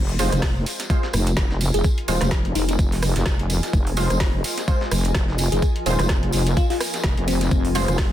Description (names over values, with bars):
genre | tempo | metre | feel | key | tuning
bass house | 127 BPM | 4/4 | swing 56% on 16ths | F minor | A4 = 440 Hz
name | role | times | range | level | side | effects
wobble bass | bass | 0.0-8.1 s | Eb1 to F1 | -22 LUFS | equal | chorus, tube saturation, sidechain pumping
granular cloud pad | texture | 0.8-8.1 s | F4 to Ab5 | -31 LUFS | left 1 dB | built-in reverb, sidechain pumping
garage drum kit | drums | 0.1-8.1 s | hi-hat, rim click, snare drum | -28 LUFS | right 2 dB | overdrive
orchestra-hit-like synth stab | stabs | 0.2-8.1 s | Ab3 to C5 | -28 LUFS | right 1 dB | built-in reverb, sidechain pumping, ping-pong delay
breakbeat sampler-style drum kit | drums | 0.2-8.1 s | hi-hat, snare drum, tambourine | -35 LUFS | equal | high-pass filter on perc, high-pass filter on snare, high-pass filter on hats
tambourine | percussion | 0.2-8.1 s | none | -34 LUFS | left 2 dB | none
electronic kick drum | drums | 0.4-8.1 s | none | -21 LUFS | equal | overdrive
bell-like FM electric piano | melody | 1.7-7.9 s | C4 to Ab4 | -28 LUFS | left 4 dB | chorus, phaser, ping-pong delay
room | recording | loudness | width
digital ambience | dense, heavily limited modern master | -18 LUFS | side -12 dB against mid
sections
0.0-8.1 A section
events
none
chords
0.0 Fm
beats
0.43 0.90 1.37 | 1.84 2.32 2.79 3.26 | 3.73 4.21 4.68 5.15 | 5.62 6.10 6.57 7.04 | 7.51 7.99